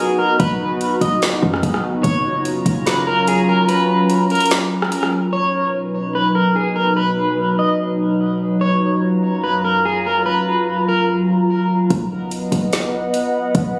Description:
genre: hip hop, atmospheric cloud-rap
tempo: 146 BPM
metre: 4/4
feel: half-time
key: unclear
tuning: A4 = 438 Hz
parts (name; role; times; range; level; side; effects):
- electric guitar at the edge of break-up; melody; 0.0-11.1 s; G#4 to D#5; -22 LUFS; equal; harmonic tremolo, tape echo
- warbly tape-like pad; sustained chords; 0.0-13.8 s; F#2 to A#5; -21 LUFS; equal; chorus, built-in reverb, sidechain pumping
- warm 808-style bass; bass; 0.4-3.6, 11.9-13.8 s; F#1 to F#2; -25 LUFS; equal; none
- smooth R&B drum kit; drums; 0.4-5.1, 11.9-13.6 s; hi-hat, kick drum, rim click, snare drum; -23 LUFS; equal; none
room: light reverb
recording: recorded on a phone in the room, studio reverb, compression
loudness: -18 LUFS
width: mono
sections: 0.0-5.3 A section; 5.3-11.9 B section; 11.9-13.8 C section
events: kick muted 3.7-5.3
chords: 0.0 B; 2.0 F#maj7; 5.3 B; 8.6 F#maj7; 11.9 B

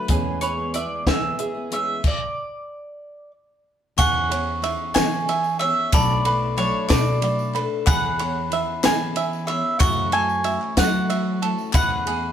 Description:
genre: indie folk with a building arrangement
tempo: 62 BPM (dotted quarters)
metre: 6/8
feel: straight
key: E mixolydian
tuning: A4 = 440 Hz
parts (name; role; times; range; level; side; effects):
- mandolin; melody; 0.0-12.3 s; B4 to G#5; -25 LUFS; right 2 dB; none
- fingerpicked acoustic archtop guitar; accompaniment; 0.0-2.0 s; E2 to G#4; -31 LUFS; right 1 dB; none
- picked steel-string acoustic guitar; accompaniment; 0.0-12.3 s; F#2 to A4; -30 LUFS; left 5 dB; none
- bluegrass banjo; arpeggios; 0.0-12.3 s; D4 to A5; -29 LUFS; right 6 dB; none
- upright bass; bass; 0.1-12.3 s; B1 to F#3; -28 LUFS; right 1 dB; none
- compact cocktail drum kit; drums; 0.1-12.2 s; crash cymbal, hi-hat, kick drum, ride cymbal, snare drum; -23 LUFS; equal; none
- glockenspiel with brass mallets; second line; 4.0-12.3 s; B5 to C#6; -27 LUFS; left 2 dB; none
- group handclap; percussion; 4.0-12.0 s; none; -33 LUFS; left 6 dB; none
- tambourine; percussion; 4.0-11.9 s; none; -39 LUFS; right 8 dB; none
room: moderate studio reverb, RT60 0.9 s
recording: band playing live in one room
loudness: -19 LUFS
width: side -9 dB against mid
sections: 0.0-4.0 A section; 4.0-12.3 B section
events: stop 2.0-4.0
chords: 0.1 E6; 2.0 N.C.; 4.0 E6; 5.9 Bm7; 7.9 E6; 9.8 F#m7; 11.7 E6

